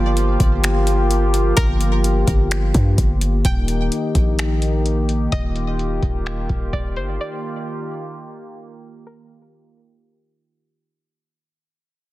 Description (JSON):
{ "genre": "hip hop, atmospheric cloud-rap", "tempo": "128 BPM", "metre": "4/4", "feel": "half-time", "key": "Eb major", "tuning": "A4 = 439 Hz", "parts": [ { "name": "string-like resonator pluck", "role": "melody", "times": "0.0-10.4 s", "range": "Bb4 to G5", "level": "-28 LUFS", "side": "equal", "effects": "chorus, digital delay" }, { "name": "warm analog pad", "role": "sustained chords", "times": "0.0-10.9 s", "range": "Eb3 to G4", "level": "-23 LUFS", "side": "equal", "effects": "chorus, sidechain pumping" }, { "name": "warm 808-style bass", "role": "bass", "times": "0.0-7.2 s", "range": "Eb1 to G2", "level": "-19 LUFS", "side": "equal", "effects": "none" }, { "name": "booming analog drum machine", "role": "drums", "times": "0.2-7.1 s", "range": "finger snaps, hi-hat, kick drum", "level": "-21 LUFS", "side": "equal", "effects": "soft clipping on snare" } ], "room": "digital ambience", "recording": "dense, heavily limited modern master, low-pass filter", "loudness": "-17 LUFS", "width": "side -16 dB against mid", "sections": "0.0-3.4 A section; 3.4-10.9 B section", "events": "fade-out 3.4-10.9; filter sweep 3.4-10.9", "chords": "0.0 Gm7; 3.4 Eb" }